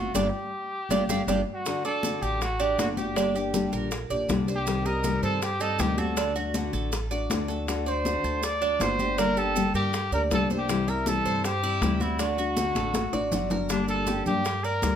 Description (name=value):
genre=latin, Cuban son and guajira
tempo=159 BPM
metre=4/4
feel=straight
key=G harmonic minor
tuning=A4 = 438 Hz
part: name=warm trumpet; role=melody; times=0.0-15.0 s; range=D4 to D5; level=-29 LUFS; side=equal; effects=none
part: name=nylon-string guitar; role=accompaniment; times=0.0-15.0 s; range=C3 to G4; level=-29 LUFS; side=left 4 dB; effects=none
part: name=Cuban tres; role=arpeggios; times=0.0-15.0 s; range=D4 to E5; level=-31 LUFS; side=right 7 dB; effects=none
part: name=upright bass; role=bass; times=0.0-15.0 s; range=G1 to G2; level=-32 LUFS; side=equal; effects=none
part: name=bongos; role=percussion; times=0.1-15.0 s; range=none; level=-35 LUFS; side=left 4 dB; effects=none
part: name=congas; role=percussion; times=0.1-15.0 s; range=none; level=-34 LUFS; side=equal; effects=none
part: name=maracas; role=percussion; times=0.1-15.0 s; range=none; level=-39 LUFS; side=right 6 dB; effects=none
room=moderate large studio reverb, RT60 1.1 s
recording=none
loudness=-24 LUFS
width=side -9 dB against mid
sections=0.0-1.7 A section; 1.7-13.7 B section; 13.7-15.0 C section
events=drum fill 0.1-1.7, 12.8-13.7; band accent 0.1-1.7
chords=0.1 Gm7; 1.7 D; 3.2 Gm; 4.7 Cm; 6.2 D; 9.2 Gm; 10.7 C; 12.2 D; 13.7 Gm